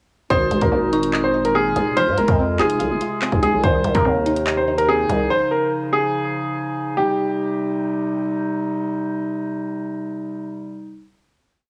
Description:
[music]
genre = hip hop, drill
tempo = 144 BPM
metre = 4/4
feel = half-time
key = C phrygian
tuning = A4 = 441 Hz
[part]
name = clear concert grand piano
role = melody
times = 0.3-8.2 s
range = G4 to C5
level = -22 LUFS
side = equal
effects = cassette tape, tape echo
[part]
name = dark detuned synth bell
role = second line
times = 0.3-2.8 s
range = Db6 to F6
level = -32 LUFS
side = equal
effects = chorus, phaser, tape echo
[part]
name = string-like resonator pluck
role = accompaniment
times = 0.3-5.3 s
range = Eb3 to F5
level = -29 LUFS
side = equal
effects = chorus
[part]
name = mellow woodwind section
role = sustained chords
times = 0.3-11.1 s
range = Bb2 to F4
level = -27 LUFS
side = equal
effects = none
[part]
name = growling 808-style bass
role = bass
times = 0.3-5.3 s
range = F1 to C3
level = -25 LUFS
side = equal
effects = none
[part]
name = drill drum kit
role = drums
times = 0.3-5.2 s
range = handclaps, hi-hat, kick drum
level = -25 LUFS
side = equal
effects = cassette tape
[sound]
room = little or no reverb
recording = home recording on cassette, studio ambience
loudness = -20 LUFS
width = mono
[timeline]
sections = 0.3-7.0 hook; 7.0-10.3 final chord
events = none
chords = 0.3 Absus2; 2.0 Fm; 3.6 Cm; 5.3 Dbadd9; 7.0 Cm

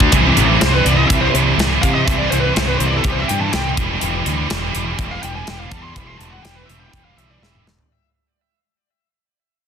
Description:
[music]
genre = heavy metal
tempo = 123 BPM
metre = 4/4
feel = straight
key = unclear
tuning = A4 = 445 Hz
[part]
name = scooped high-gain guitar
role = riff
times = 0.0-7.7 s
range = C3 to D4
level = -17 LUFS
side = right 2 dB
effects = distortion
[part]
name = fuzz picked electric bass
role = bass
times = 0.0-7.8 s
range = E1 to C3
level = -20 LUFS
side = equal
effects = overdrive
[part]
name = tight metal drum kit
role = drums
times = 0.0-7.9 s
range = hi-hat, kick drum, snare drum, toms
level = -20 LUFS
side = equal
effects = soft clipping on kick, soft clipping on snare
[part]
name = high-gain lead guitar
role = melody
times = 0.6-7.6 s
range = G4 to C6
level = -23 LUFS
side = left 1 dB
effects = distortion, ping-pong delay
[sound]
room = small room ambience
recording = dense, heavily limited modern master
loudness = -14 LUFS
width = side -7 dB against mid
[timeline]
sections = 0.1-7.9 A section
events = fade-out 0.1-7.9; lead electric guitar solo 0.1-7.9; drum fill 7.4-7.9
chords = 0.1 C; 3.8 Em

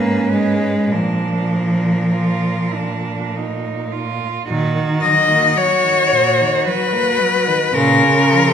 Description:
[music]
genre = classical, lyrical piece for cello ensemble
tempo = 49-56 BPM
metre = 3/4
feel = rubato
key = Eb minor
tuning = A4 = 438 Hz
[part]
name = clear cello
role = melody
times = 0.0-8.5 s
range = Bb4 to Eb5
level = -17 LUFS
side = left 4 dB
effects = none
[part]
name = warm cello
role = second line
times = 0.0-8.5 s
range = Db4 to Gb4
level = -23 LUFS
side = right 8 dB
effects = none
[part]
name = rich cello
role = accompaniment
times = 0.0-8.5 s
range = Bb2 to Bb3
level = -20 LUFS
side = equal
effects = none
[part]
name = warm cello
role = bass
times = 0.0-8.5 s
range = G#2 to Eb3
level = -20 LUFS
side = right 2 dB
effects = none
[sound]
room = wet recital hall reverb, RT60 1.5 s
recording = none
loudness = -14 LUFS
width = side -8 dB against mid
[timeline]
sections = 0.0-4.5 A section; 4.5-8.5 B section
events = none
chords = 0.0 Abmadd9; 0.9 Bb; 4.5 Ebm/Bb; 7.7 Bbm

